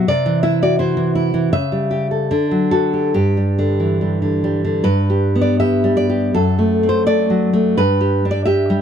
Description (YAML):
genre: romantic piece for solo classical guitar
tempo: 68-86 BPM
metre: 2/4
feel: rubato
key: G major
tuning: A4 = 440 Hz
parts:
  - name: nylon-string guitar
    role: solo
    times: 0.0-8.8 s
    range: F#2 to E5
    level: -14 LUFS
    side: equal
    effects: none
room: light reverb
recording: dry, close 1970s-style studio recording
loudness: -14 LUFS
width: side -8 dB against mid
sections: 0.0-4.8 A section; 4.8-8.8 B section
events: none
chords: 0.1 D9/C; 1.5 C#dim; 2.3 D; 3.1 G5; 4.8 G; 6.3 D7/F#; 7.8 G5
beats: | 0.08 0.79 | 1.53 2.31 | 3.15 4.01 | 4.84 5.61 | 6.34 7.07 | 7.78 8.48